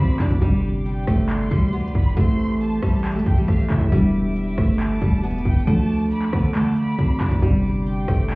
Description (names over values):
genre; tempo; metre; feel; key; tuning
hip hop, trap; 137 BPM; 4/4; half-time; A minor; A4 = 438 Hz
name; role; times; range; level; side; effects
picked steel-string acoustic guitar; melody; 0.0-8.4 s; G3 to D4; -22 LUFS; right 1 dB; low-pass filter, digital delay
rich studio violin section; second line; 0.0-8.4 s; E5 to C6; -35 LUFS; equal; digital delay
dark concert grand piano; accompaniment; 0.0-8.4 s; C3 to D5; -29 LUFS; left 1 dB; low-pass filter
warm studio string section; sustained chords; 0.0-8.4 s; F4 to D6; -38 LUFS; equal; none
distorted 808-style bass; bass; 0.0-8.4 s; E1 to D3; -23 LUFS; equal; distortion
trap drum kit; drums; 0.2-8.4 s; handclaps, hi-hat, kick drum, rim click; -21 LUFS; equal; none
room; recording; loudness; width
small room ambience; heard muffled through a wall, club reverb, vinyl crackle, EQ; -18 LUFS; side -24 dB against mid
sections
0.0-8.4 A section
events
none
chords
0.4 Gsus4; 2.2 Am7; 3.9 Em7; 5.7 Dm; 7.4 Gsus4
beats
| 0.42 0.85 1.29 1.73 | 2.17 2.61 3.04 3.48 | 3.92 4.36 4.80 5.24 | 5.67 6.11 6.55 6.99 | 7.42 7.86 8.30